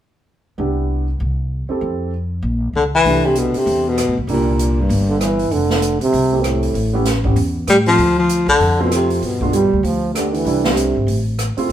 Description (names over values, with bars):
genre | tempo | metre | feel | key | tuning
jazz, small-group swing and bop | 194 BPM | 4/4 | swing 60% on 8ths | C major | A4 = 440 Hz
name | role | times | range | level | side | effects
warm concert grand piano | accompaniment | 0.6-11.7 s | G3 to A4 | -22 LUFS | right 3 dB | none
upright bass | bass | 0.6-11.7 s | F1 to A2 | -20 LUFS | equal | none
breathy baritone saxophone | melody | 2.8-5.4, 7.7-9.7 s | G2 to G3 | -15 LUFS | left 2 dB | none
open jazz drum kit | drums | 3.0-11.7 s | hi-hat, kick drum, rim click, snare drum | -25 LUFS | equal | none
breathy trombone | second line | 5.1-7.1, 9.5-11.2 s | A2 to G3 | -18 LUFS | right 3 dB | none
room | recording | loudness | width
moderate stone room reverb, RT60 1.0 s | band playing live in one room | -15 LUFS | side -11 dB against mid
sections
0.6-3.0 A section; 3.0-11.7 B section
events
none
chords
0.6 Cmaj9; 1.2 C6; 1.8 Fmaj9; 2.4 Bbm; 3.0 C69; 4.3 C7; 5.5 Fmaj7; 6.8 A7; 8.0 Dm7; 9.2 G7; 10.5 C69; 11.1 Am